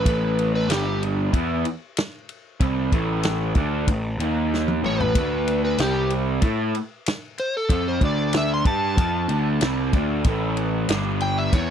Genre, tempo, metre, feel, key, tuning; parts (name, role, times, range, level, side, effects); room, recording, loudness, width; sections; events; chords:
blues rock power trio and southern rock; 94 BPM; 4/4; straight; A4 = 440 Hz
overdriven slide guitar; melody; 0.0-1.0, 4.9-11.7 s; G4 to C6; -25 LUFS; equal
raw garage guitar; riff; 0.0-11.7 s; G2 to A4; -25 LUFS; equal; overdrive
fuzz picked electric bass; bass; 0.0-11.7 s; G1 to A2; -25 LUFS; equal; overdrive
vintage drum kit; drums; 0.1-11.7 s; kick drum, ride cymbal, snare drum, toms; -23 LUFS; equal
little or no reverb; dry, close 1970s-style studio recording; -20 LUFS; side -8 dB against mid
0.0-11.7 A section
electric slide guitar solo 0.0-11.7; drum fill 4.5-5.2
0.0 A5; 0.7 G5; 1.3 A5; 4.2 D#5; 4.8 A; 5.2 D5; 5.8 C5; 6.4 D5; 10.3 A5; 10.9 G5